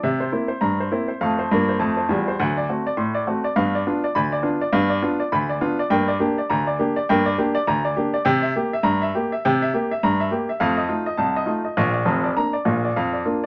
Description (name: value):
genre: ragtime piano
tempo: 102 BPM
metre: 2/4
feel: swing 59% on 16ths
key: Bb major from 5.9 s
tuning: A4 = 441 Hz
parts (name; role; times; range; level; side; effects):
- warm upright piano; solo; 0.0-13.5 s; F1 to C6; -22 LUFS; equal; none
room: moderate small room reverb, RT60 0.5 s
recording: none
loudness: -22 LUFS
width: mono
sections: 0.0-13.5 A section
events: none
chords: 0.0 C7; 1.2 F; 2.4 D7; 3.6 G7; 5.9 Gm; 8.3 C7; 10.6 F7; 11.8 Bb/F